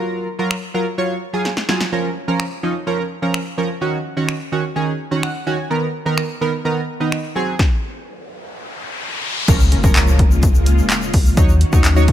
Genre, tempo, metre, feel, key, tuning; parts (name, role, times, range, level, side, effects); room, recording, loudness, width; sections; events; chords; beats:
dance-pop; 127 BPM; 4/4; straight; Db major; A4 = 440 Hz
chorused retro synth keys; accompaniment; 0.0-12.1 s; Eb3 to Ab5; -20 LUFS; right 2 dB; sidechain pumping
punchy analog drum machine; drums; 0.5-12.1 s; crash cymbal, finger snaps, handclaps, hi-hat, kick drum, snare drum; -17 LUFS; equal
riser and impact; sound effects; 8.1-11.4 s; -25 LUFS; left 1 dB
string machine, full ensemble; sustained chords; 9.5-12.1 s; Db3 to Gb4; -23 LUFS; left 1 dB; ensemble chorus, sidechain pumping
sub bass with octave; bass; 9.5-12.1 s; Db2 to Eb2; -15 LUFS; equal; sidechain pumping
tube shaker; percussion; 9.5-12.1 s; -33 LUFS; left 10 dB
light reverb; -16 LUFS; side -11 dB against mid
0.0-9.5 A section; 9.5-12.1 B section
drum fill 1.5-1.9; synth keys fill 5.0-5.7; stop 7.6-9.5; riser 8.1-9.5; impact 9.5-11.4
0.0 Gbmaj7; 1.9 Db6; 3.8 Ebm7; 5.7 Cbmaj7/Eb; 7.4 Ab7; 9.5 Db6; 11.4 Ebm7
| 0.03 0.51 0.98 1.45 | 1.92 2.40 2.87 3.34 | 3.81 4.29 4.76 5.23 | 5.70 6.18 6.65 7.12 | 7.59 8.07 8.54 9.01 | 9.48 9.96 10.43 10.90 | 11.37 11.85